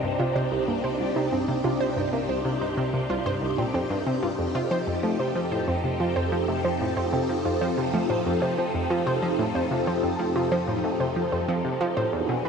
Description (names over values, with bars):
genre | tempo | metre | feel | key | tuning
ambient | 93 BPM | 4/4 | straight | unclear | A4 = 440 Hz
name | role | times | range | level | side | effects
phased string machine | sustained chords | 0.0-12.5 s | C3 to A4 | -27 LUFS | equal | ensemble chorus, phaser
analog pluck | riff | 0.0-12.5 s | C2 to F3 | -28 LUFS | equal | chorus, tape echo
analog drone | bass | 0.0-12.5 s | C2 to F2 | -39 LUFS | left 1 dB | chorus
wide unison pluck | arpeggios | 0.2-12.5 s | A3 to C5 | -29 LUFS | right 2 dB | auto-pan, tape echo
room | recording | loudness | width
wet huge ambient reverb, RT60 8.1 s | cassette tape | -23 LUFS | side -6 dB against mid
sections
0.0-12.5 A section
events
fade-in on synth drone 0.0-12.5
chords
0.0 Cmadd9; 4.4 F7